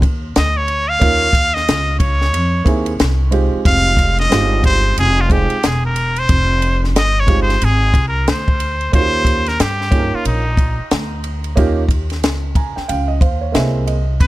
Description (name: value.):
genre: hip hop, jazz-hop.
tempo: 91 BPM.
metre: 4/4.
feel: swing 62% on 16ths.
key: unclear.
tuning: A4 = 441 Hz.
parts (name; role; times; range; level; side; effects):
upright bass; bass; 0.0-14.3 s; E1 to G2; -18 LUFS; equal; none.
compact cocktail drum kit; drums; 0.0-14.3 s; hi-hat, kick drum, ride cymbal, snare drum; -17 LUFS; equal; none.
trumpet with straight mute; melody; 0.4-14.3 s; Eb4 to F5; -18 LUFS; equal; analog delay.
dark upright piano; accompaniment; 1.0-14.2 s; Ab3 to Bb5; -21 LUFS; right 4 dB; none.
room: studio reverb.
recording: none.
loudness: -13 LUFS.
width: side -17 dB against mid.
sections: 0.0-8.9 A section; 8.9-14.3 B section.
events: muted trumpet solo 0.0-8.9; upright piano fill 12.2-14.2.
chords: 0.0 Eb7(no3); 3.0 Cm; 3.7 Fm9; 8.9 Eb7; 13.5 C7alt.